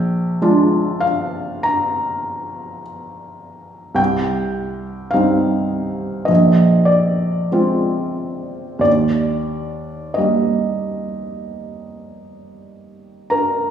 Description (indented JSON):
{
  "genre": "classical, romantic nocturne for solo piano",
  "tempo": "44-53 BPM",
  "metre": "4/4",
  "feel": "rubato",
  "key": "Eb major",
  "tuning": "A4 = 440 Hz",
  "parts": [
    { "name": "felt-muted upright piano", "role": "solo", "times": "0.0-13.7 s", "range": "Bb1 to Bb5", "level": "-16 LUFS", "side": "equal", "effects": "none" }
  ],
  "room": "wet recital hall reverb, RT60 1.8 s",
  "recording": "heard from further back in the room, studio reverb",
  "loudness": "-16 LUFS",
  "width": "side -9 dB against mid",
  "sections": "0.0-13.7 A section",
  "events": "none",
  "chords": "0.0 Bb7; 4.0 Cm; 6.3 Bb9; 8.9 Eb"
}